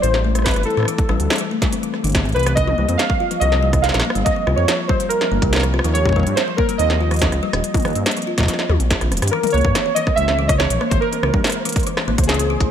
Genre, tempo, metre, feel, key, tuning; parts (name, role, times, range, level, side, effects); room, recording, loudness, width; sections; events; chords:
IDM; 142 BPM; 4/4; straight; A4 = 442 Hz
warbly lo-fi synth keys; melody; 0.0-12.7 s; Ab4 to F5; -21 LUFS; right 1 dB; chorus, ping-pong delay
dark detuned saw bass; bass; 0.0-12.7 s; Eb1 to A2; -19 LUFS; equal
industrial drum kit; drums; 0.0-12.7 s; hi-hat, rim click, snare drum, toms; -23 LUFS; equal; small room ambience, digital delay
kalimba; arpeggios; 0.1-12.5 s; Eb3 to F4; -24 LUFS; left 5 dB; ping-pong delay
electronic kick drum; drums; 0.5-12.7 s; -20 LUFS; equal; small room ambience
flickering grainy texture; texture; 10.0-12.7 s; C5; -32 LUFS; right 6 dB; built-in reverb
light reverb, digital ambience; -16 LUFS; side -9 dB against mid
0.0-9.3 A section; 9.3-12.7 A section
drum fill 9.1
0.0 Am7; 2.6 Cm; 5.9 Eb; 9.3 Dbm6